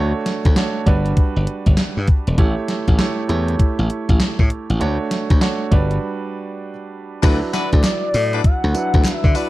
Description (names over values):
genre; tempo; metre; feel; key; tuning
R&B, new jack swing; 99 BPM; 4/4; swing 64% on 16ths; D major; A4 = 440 Hz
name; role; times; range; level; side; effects
clear concert grand piano; accompaniment; 0.0-9.5 s; F#3 to C#5; -24 LUFS; right 4 dB; none
glassy slap bass; bass; 0.0-9.3 s; E1 to D3; -19 LUFS; equal; none
gated 80s digital drum machine; drums; 0.3-9.5 s; crash cymbal, hi-hat, kick drum, snare drum, tambourine; -16 LUFS; equal; gated reverb, gated reverb snare
warm horn section; stabs; 7.2-9.5 s; D4 to B4; -24 LUFS; left 6 dB; slapback echo
warm velvety synth lead; melody; 7.5-9.5 s; D5 to F#5; -22 LUFS; left 3 dB; chorus, tremolo, slapback echo
group handclap; percussion; 7.8-9.2 s; none; -34 LUFS; left 8 dB; none
room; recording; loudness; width
little or no reverb; dry, close 1970s-style studio recording; -15 LUFS; side -17 dB against mid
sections
0.0-7.2 A section; 7.2-9.5 B section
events
break 6.0-7.2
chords
0.0 Dmaj7; 0.9 Gmaj7; 2.4 A7; 4.8 Dmaj7; 5.7 Gmaj7; 7.2 D69